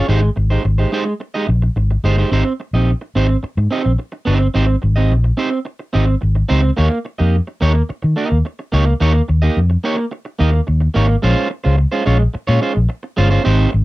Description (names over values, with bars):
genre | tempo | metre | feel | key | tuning
disco | 108 BPM | 4/4 | straight | unclear | A4 = 440 Hz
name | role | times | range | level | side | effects
electric guitar at the edge of break-up | accompaniment | 0.0-13.8 s | Ab3 to Eb5 | -18 LUFS | right 3 dB | none
fingered electric bass | bass | 0.1-13.8 s | G1 to Eb3 | -14 LUFS | equal | none
room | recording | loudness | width
little or no reverb | dry, close 1970s-style studio recording | -14 LUFS | side -18 dB against mid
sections
0.0-2.3 A section; 2.3-11.2 B section; 11.2-13.8 C section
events
none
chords
0.1 Abmaj7; 6.8 Eb7; 11.2 Bbm9